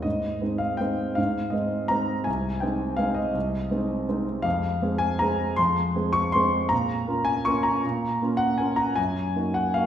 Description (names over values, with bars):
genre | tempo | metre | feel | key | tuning
classical, piano waltz | 149-174 BPM | 3/4 | rubato | Ab major | A4 = 440 Hz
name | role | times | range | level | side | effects
warm concert grand piano | solo | 0.0-9.9 s | C2 to Db6 | -23 LUFS | equal | none
room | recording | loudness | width
wet recital hall reverb, RT60 1.4 s | heard from further back in the room | -23 LUFS | side -10 dB against mid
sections
0.0-9.9 A section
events
none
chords
0.1 Ab; 2.3 Ab/C; 4.5 Fm; 6.7 Bbm; 9.0 Ebm/Gb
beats
| 0.05 0.42 0.81 | 1.18 1.53 1.91 | 2.28 2.63 3.00 | 3.35 3.71 4.08 | 4.45 4.82 5.21 | 5.58 5.95 6.34 | 6.71 7.08 7.46 | 7.84 8.21 8.59 | 8.98 9.36 9.76